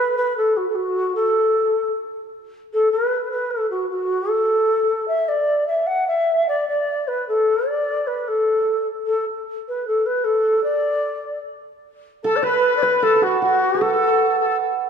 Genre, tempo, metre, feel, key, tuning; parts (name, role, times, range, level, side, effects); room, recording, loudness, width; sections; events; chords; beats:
chinese traditional, Chinese chamber ensemble; 76 BPM; 2/4; rubato; A4 = 440 Hz
xiao; melody; 0.0-14.6 s; F#4 to F#5; -19 LUFS; equal
bright reedy large dizi; second line; 12.2-14.6 s; F#4 to B4; -22 LUFS; left 6 dB
hammered dulcimer; second line; 12.2-14.9 s; F#4 to B4; -21 LUFS; right 6 dB
moderate concert hall reverb, RT60 2.3 s; minimal, uncompressed stereo recording; -18 LUFS; side -7 dB against mid
0.0-12.2 A section; 12.2-14.9 B section
0.37 | 1.16 1.95 | 2.73 3.51 | 4.30 5.10 | 5.91 6.71 | 7.50 8.29 | 9.07 9.86 | 10.64 11.43 | 12.23 13.03 | 13.80 14.57